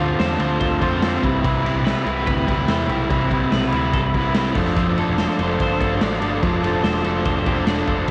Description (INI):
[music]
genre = jangly indie pop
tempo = 144 BPM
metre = 4/4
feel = straight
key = unclear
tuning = A4 = 440 Hz
[part]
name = crunchy overdriven guitar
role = accompaniment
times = 0.0-8.1 s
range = C3 to C5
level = -24 LUFS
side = equal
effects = none
[part]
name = hollow soft pad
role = sustained chords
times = 0.0-8.1 s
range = C4 to E6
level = -33 LUFS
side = equal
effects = chorus
[part]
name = twelve-string electric guitar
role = arpeggios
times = 0.0-8.1 s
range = C3 to C5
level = -26 LUFS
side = equal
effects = none
[part]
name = picked electric bass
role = bass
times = 0.0-8.1 s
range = E1 to F2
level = -29 LUFS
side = equal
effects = none
[part]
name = raw garage drum kit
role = drums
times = 0.2-8.1 s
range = hi-hat, kick drum, ride cymbal, snare drum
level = -26 LUFS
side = equal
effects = cassette tape
[sound]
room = light reverb, small room ambience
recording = home recording on cassette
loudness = -20 LUFS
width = mono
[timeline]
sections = 0.0-8.1 A section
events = none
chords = 0.0 Dm7; 1.2 Cmaj7; 4.6 F6